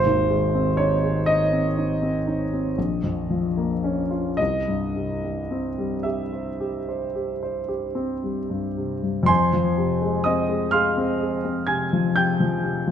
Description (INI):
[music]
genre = classical, romantic nocturne for solo piano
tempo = 35-43 BPM (dotted quarters)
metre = 9/8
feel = rubato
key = F minor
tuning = A4 = 441 Hz
[part]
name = warm grand piano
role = solo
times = 0.0-12.9 s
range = Ab1 to Ab6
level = -21 LUFS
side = equal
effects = none
[sound]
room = wet recital hall reverb, RT60 1.8 s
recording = none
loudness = -21 LUFS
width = side -9 dB against mid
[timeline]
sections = 0.0-9.3 A section; 9.3-12.9 B section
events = none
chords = 0.0 Ab; 2.8 Bbm; 4.4 C; 9.3 Fm